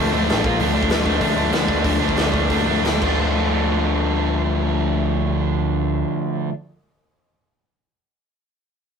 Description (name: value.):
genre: punk rock.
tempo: 167-196 BPM.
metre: 4/4.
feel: straight.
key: D minor.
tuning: A4 = 440 Hz.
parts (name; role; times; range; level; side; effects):
distorted electric guitar; riff; 0.0-6.5 s; Bb2 to F4; -24 LUFS; right 6 dB; overdrive.
overdriven electric guitar; riff; 0.0-6.5 s; Bb2 to F4; -22 LUFS; left 3 dB; none.
overdriven picked electric bass; bass; 0.0-6.0 s; A1 to D2; -24 LUFS; right 1 dB; none.
raw garage drum kit; drums; 0.3-3.1 s; crash cymbal, hi-hat, kick drum, snare drum; -23 LUFS; equal; none.
room: moderate small room reverb, RT60 0.6 s.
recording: rough rehearsal-room recording.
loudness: -17 LUFS.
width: side -6 dB against mid.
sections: 0.0-3.2 A section; 3.2-6.1 B section.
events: slowing down 0.6-3.2.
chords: 0.4 Bb5; 0.6 Dm.